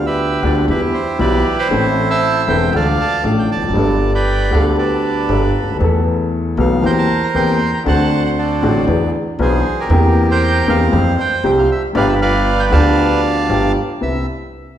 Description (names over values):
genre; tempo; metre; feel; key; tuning
tango; 117 BPM; 4/4; rubato; C major; A4 = 440 Hz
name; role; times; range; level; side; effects
bandoneon; melody; 0.0-14.3 s; E4 to C6; -18 LUFS; right 3 dB; none
dark upright piano; accompaniment; 0.0-14.2 s; E1 to B4; -16 LUFS; left 2 dB; none
upright bass; bass; 0.0-14.2 s; E1 to F2; -19 LUFS; right 1 dB; none
room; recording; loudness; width
wet recital hall reverb, RT60 1.5 s; recorded in a church or concert hall; -13 LUFS; side -10 dB against mid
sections
0.0-14.0 A section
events
none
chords
0.0 G7/D; 0.7 Em; 1.7 Amadd9; 2.7 Dm; 3.8 Gadd9; 5.8 Esus4; 6.8 C7/E; 7.9 D7; 8.9 E7; 9.9 C7/E; 10.9 Fsus2; 12.0 G7; 14.0 Cmaj7